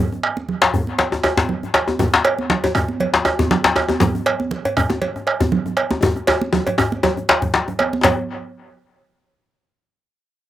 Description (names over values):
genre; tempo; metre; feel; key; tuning
west african traditional, West African drum ensemble; 119 BPM; 4/4; swing 54% on 16ths; none; none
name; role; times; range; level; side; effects
djembe; percussion; 0.1-8.3 s; none; -26 LUFS; left 2 dB; none
bombo; percussion; 0.2-8.3 s; none; -22 LUFS; right 2 dB; none
congas; percussion; 0.4-8.3 s; none; -24 LUFS; right 5 dB; none
cowbell; percussion; 0.6-8.3 s; none; -23 LUFS; right 2 dB; slapback echo
djembe; percussion; 0.6-8.3 s; none; -18 LUFS; left 4 dB; slapback echo
room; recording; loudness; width
little or no reverb; recorded outdoors, with no room sound; -16 LUFS; side -13 dB against mid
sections
0.0-8.0 A section; 8.0-10.1 B section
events
drum fill 6.0-8.0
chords
none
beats
0.48 0.98 1.49 | 1.99 2.50 3.00 3.50 | 4.01 4.51 5.02 5.52 | 6.03 6.53 7.03 7.54 | 8.04